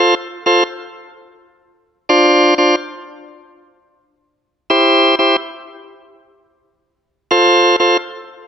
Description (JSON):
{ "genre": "dancehall", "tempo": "free time", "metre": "none", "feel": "none", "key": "F major", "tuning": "A4 = 443 Hz", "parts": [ { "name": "bright tonewheel organ", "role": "solo", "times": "0.0-8.0 s", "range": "D4 to C5", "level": "-11 LUFS", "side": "equal", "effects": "overdrive, stopped rotary speaker" } ], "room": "light reverb, digital ambience", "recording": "none", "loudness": "-10 LUFS", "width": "side -7 dB against mid", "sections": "0.0-2.1 A section; 2.1-8.5 B section", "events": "none", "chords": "0.0 F; 2.1 Dm7; 4.7 C; 7.3 F" }